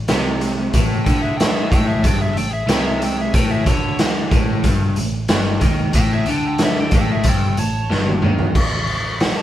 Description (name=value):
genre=blues rock power trio and southern rock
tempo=92 BPM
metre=4/4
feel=straight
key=unclear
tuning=A4 = 440 Hz
part: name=overdriven electric guitar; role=riff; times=0.0-8.5 s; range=G2 to D#3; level=-22 LUFS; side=left 1 dB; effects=none
part: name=vintage muted picked electric bass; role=bass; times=0.0-9.3 s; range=G1 to D#2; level=-25 LUFS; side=equal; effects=none
part: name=raw garage drum kit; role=drums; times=0.1-9.4 s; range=crash cymbal, hi-hat, kick drum, snare drum, toms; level=-18 LUFS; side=equal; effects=none
part: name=biting lead guitar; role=melody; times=1.0-9.4 s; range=C#5 to A5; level=-25 LUFS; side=left 1 dB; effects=overdrive
part: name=biting lead guitar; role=second line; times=1.1-7.9 s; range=E4 to C#5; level=-32 LUFS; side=right 4 dB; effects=overdrive
room=light reverb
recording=band playing live in one room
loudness=-15 LUFS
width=side -12 dB against mid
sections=0.0-8.6 A section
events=drum fill 7.9-8.6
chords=0.0 A5; 8.6 N.C.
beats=0.09 | 0.74 1.40 2.05 2.70 | 3.35 4.00 4.66 5.31 | 5.96 6.61 7.26 7.91 | 8.56 9.21